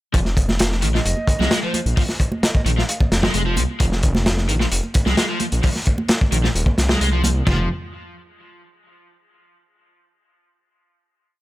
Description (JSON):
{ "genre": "breakbeat, breaks", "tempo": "131 BPM", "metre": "4/4", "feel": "straight", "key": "F minor pentatonic", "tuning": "A4 = 439 Hz", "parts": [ { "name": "overdriven semi-hollow guitar", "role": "riff", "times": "0.1-7.7 s", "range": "Eb3 to Ab3", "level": "-26 LUFS", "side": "equal", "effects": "dub echo" }, { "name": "detuned saw bass", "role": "bass", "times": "0.1-7.7 s", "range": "Eb1 to C2", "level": "-20 LUFS", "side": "equal", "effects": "none" }, { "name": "crunchy breakbeat drum kit", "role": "drums", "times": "0.1-7.6 s", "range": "china cymbal, hi-hat, kick drum, snare drum, toms", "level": "-19 LUFS", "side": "equal", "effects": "none" }, { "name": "congas", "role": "percussion", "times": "0.5-7.3 s", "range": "none", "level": "-29 LUFS", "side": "right 2 dB", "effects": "none" }, { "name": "breathy mellow wooden flute", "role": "melody", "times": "0.9-3.0 s", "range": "C5 to F5", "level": "-31 LUFS", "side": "right 2 dB", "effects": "AM radio sound, vintage 12-bit sampler grit, dub echo" } ], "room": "small room ambience", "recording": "none", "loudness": "-16 LUFS", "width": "side -17 dB against mid", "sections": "0.1-7.5 drop; 7.5-9.3 final note", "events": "drop 0.1-7.5", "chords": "none" }